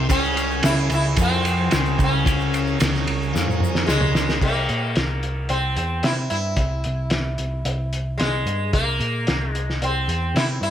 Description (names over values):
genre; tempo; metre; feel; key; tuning
psychedelic rock; 111 BPM; 4/4; straight; C phrygian dominant; A4 = 440 Hz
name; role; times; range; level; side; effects
overdriven combo organ; sustained chords; 0.0-4.4 s; Ab4 to Db6; -33 LUFS; right 7 dB; lush chorus
fuzz guitar; riff; 0.0-4.4 s; Db3 to F3; -24 LUFS; left 2 dB; distortion, phaser
hollow-body short-scale picked electric bass; bass; 0.0-10.7 s; C2 to C3; -24 LUFS; equal; none
pedal harmonium; drone; 0.0-4.5 s; C2; -35 LUFS; right 2 dB; stereo widening
sitar; melody; 0.1-10.7 s; Ab3 to E4; -25 LUFS; equal; tape echo
cloth-damped thuddy drum kit; drums; 0.1-10.7 s; crash cymbal, hi-hat, kick drum, ride cymbal, snare drum, toms; -23 LUFS; equal; none
egg shaker; percussion; 0.1-4.4 s; none; -40 LUFS; left 21 dB; none
room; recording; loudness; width
light reverb, small room reverb; none; -19 LUFS; side -10 dB against mid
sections
0.0-4.4 A section; 4.4-10.7 B section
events
drum fill 3.3-4.4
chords
0.1 Db5; 4.4 C7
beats
| 0.10 0.63 1.17 1.71 | 2.25 2.79 3.33 3.87 | 4.41 4.95 5.49 6.03 | 6.58 7.12 7.66 8.20 | 8.74 9.28 9.82 10.36